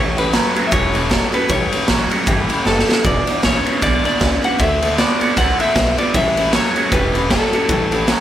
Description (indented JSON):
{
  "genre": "rockabilly",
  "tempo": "155 BPM",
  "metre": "4/4",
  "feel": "swing 58% on 8ths",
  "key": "A mixolydian",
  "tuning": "A4 = 440 Hz",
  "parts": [
    { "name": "picked steel-string acoustic guitar", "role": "accompaniment", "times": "0.0-8.2 s", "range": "A2 to B4", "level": "-25 LUFS", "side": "left 3 dB", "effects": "none" },
    { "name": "electric guitar through a small old amp", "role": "riff", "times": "0.0-8.2 s", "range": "E2 to B3", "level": "-21 LUFS", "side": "right 2 dB", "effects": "phaser" },
    { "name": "upright bass", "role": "bass", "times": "0.0-8.1 s", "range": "E1 to D2", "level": "-23 LUFS", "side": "equal", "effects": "none" },
    { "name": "electric guitar through a small old amp", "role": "melody", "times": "0.2-8.0 s", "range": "A4 to F#5", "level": "-20 LUFS", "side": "left 1 dB", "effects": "digital delay" },
    { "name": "raw garage drum kit", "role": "drums", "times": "0.2-8.2 s", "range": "kick drum, ride cymbal, snare drum", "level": "-18 LUFS", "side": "equal", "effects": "none" }
  ],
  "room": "studio reverb",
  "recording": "none",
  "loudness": "-14 LUFS",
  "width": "side -11 dB against mid",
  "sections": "0.0-8.2 A section",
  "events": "drum fill 2.7-3.0",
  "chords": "0.0 A7; 3.0 E7; 4.6 D7; 6.1 A7"
}